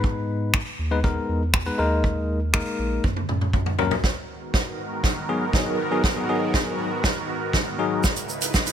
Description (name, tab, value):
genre	dance-pop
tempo	120 BPM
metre	4/4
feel	straight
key	G# minor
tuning	A4 = 440 Hz
part	bell-like tine electric piano	accompaniment	0.0-8.0 s	F#3 to B4	-26 LUFS	moving between left 10 dB and left 2 dB	auto-pan, sidechain pumping
part	round analog bass	bass	0.0-3.9 s	A#1 to G#2	-26 LUFS	right 1 dB	sidechain pumping
part	natural country drum kit	drums	0.0-8.7 s	finger snaps, hi-hat, kick drum, shaker, snare drum, toms	-23 LUFS	right 1 dB	none
part	supersaw pad	sustained chords	4.0-8.7 s	C#2 to B4	-27 LUFS	right 2 dB	phaser, sidechain pumping
room	light reverb, small room ambience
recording	none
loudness	-21 LUFS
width	side -9 dB against mid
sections	0.0-4.0 A section; 4.0-8.7 B section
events	drum fill 3.0-4.0, 4.0-8.7; build-up 4.0-8.7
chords	0.0 G#m; 1.8 D#sus4; 3.0 F#; 4.0 G#m7; 8.0 C#m7